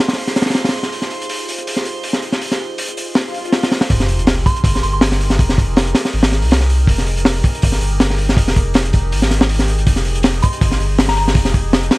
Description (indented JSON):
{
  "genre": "drum and bass, jungle",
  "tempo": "161 BPM",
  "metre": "4/4",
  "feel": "swing 54% on 16ths",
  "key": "F minor",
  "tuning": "A4 = 440 Hz",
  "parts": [
    { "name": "warbly tape-like pad", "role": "sustained chords", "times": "0.1-12.0 s", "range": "Eb4 to Eb5", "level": "-28 LUFS", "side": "right 1 dB", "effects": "chorus, built-in reverb" },
    { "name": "drifting glass-harmonics texture", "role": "texture", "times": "0.0-3.9 s", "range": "C6", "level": "-32 LUFS", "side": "right 3 dB", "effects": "chorus, built-in reverb" },
    { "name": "crunchy breakbeat drum kit", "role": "drums", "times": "0.1-12.0 s", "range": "hi-hat, kick drum, snare drum", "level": "-15 LUFS", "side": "equal", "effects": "none" },
    { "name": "swell and sub drop", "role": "sound effects", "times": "3.3-5.4 s", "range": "none", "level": "-24 LUFS", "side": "left 1 dB", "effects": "none" },
    { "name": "saturated sub bass", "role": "bass", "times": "3.9-11.9 s", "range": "F1 to C2", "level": "-17 LUFS", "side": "equal", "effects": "tube saturation" },
    { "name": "soft synth bell", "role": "melody", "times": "4.5-5.0, 10.4-11.2 s", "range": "Bb5 to C6", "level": "-25 LUFS", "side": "equal", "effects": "chorus, phaser, dub echo" }
  ],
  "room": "small room ambience",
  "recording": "vinyl crackle",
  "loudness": "-13 LUFS",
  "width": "side -20 dB against mid",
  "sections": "0.0-3.9 A section; 3.9-12.0 B section",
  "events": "swell 3.3-3.9; drop 3.9-12.0; impact 3.9-5.4",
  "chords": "0.0 Fm9; 3.9 Fm11"
}